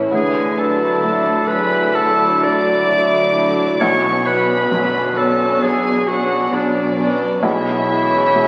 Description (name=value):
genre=cinematic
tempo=66 BPM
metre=4/4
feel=rubato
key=D lydian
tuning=A4 = 437 Hz
part: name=warm symphonic violin section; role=second line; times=0.0-8.5 s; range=C#4 to E4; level=-28 LUFS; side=equal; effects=none
part: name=dark symphonic viola section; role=accompaniment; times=0.0-8.5 s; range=E3 to B3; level=-25 LUFS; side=equal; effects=none
part: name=felt-muted upright piano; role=accompaniment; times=0.0-8.5 s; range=B1 to B2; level=-27 LUFS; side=equal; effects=none
part: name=warm French horn section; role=sustained chords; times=0.0-8.5 s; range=D3 to C#5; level=-27 LUFS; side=equal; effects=none
part: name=concert harp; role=arpeggios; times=0.0-8.5 s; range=A2 to C#6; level=-27 LUFS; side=equal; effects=none
part: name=warm chamber violin section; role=melody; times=0.1-8.5 s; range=D5 to D6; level=-27 LUFS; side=equal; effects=none
part: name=bright clarinet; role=second line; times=0.1-8.5 s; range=D4 to D5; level=-20 LUFS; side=equal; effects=none
part: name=dark symphonic double bass section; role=bass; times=0.1-8.5 s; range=B1 to D2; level=-34 LUFS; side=equal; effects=none
part: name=warm studio cello section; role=bass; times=0.1-8.5 s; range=B2 to D3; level=-30 LUFS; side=equal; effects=none
room=wet scoring stage reverb, RT60 1.9 s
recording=very old 78 rpm record, vinyl crackle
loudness=-17 LUFS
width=mono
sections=0.0-8.5 A section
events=none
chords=0.1 Dadd9; 3.8 Bmadd9; 7.4 E6/B